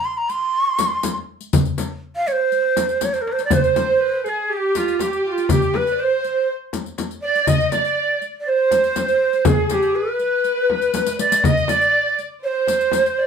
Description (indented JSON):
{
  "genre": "Arabic maqam ensemble",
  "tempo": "121 BPM",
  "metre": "4/4",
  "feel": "straight",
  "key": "unclear",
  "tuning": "A4 = 440 Hz",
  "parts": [
    { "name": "breathy bright ney", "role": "melody", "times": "0.0-13.3 s", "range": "F4 to C6", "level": "-18 LUFS", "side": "right 2 dB", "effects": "none" },
    { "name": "darbuka", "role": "percussion", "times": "0.3-13.1 s", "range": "none", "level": "-24 LUFS", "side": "equal", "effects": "none" },
    { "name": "riq", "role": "percussion", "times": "0.3-13.1 s", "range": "none", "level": "-31 LUFS", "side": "left 6 dB", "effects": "none" },
    { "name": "frame drum", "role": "percussion", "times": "0.8-13.0 s", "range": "none", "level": "-23 LUFS", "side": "left 4 dB", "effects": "none" },
    { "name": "tenor recorder", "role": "second line", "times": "3.5-13.3 s", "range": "F4 to Eb5", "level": "-25 LUFS", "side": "right 3 dB", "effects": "none" },
    { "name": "warm chamber violin section", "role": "second line", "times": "3.5-13.3 s", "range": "F4 to Eb5", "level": "-27 LUFS", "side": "right 2 dB", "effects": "none" }
  ],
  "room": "wet studio reverb, RT60 0.5 s",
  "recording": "heard from further back in the room",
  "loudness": "-17 LUFS",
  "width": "side -6 dB against mid",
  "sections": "0.0-3.5 A section; 3.5-13.3 B section",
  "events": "drum fill 3.0-3.5, 10.9-11.4",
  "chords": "none",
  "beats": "0.05 0.55 1.04 | 1.54 2.03 2.52 3.02 | 3.52 4.01 4.50 5.00 | 5.50 5.99 6.49 6.98 | 7.48 7.97 8.47 8.96 | 9.46 9.95 10.45 10.95 | 11.44 11.94 12.43 12.93"
}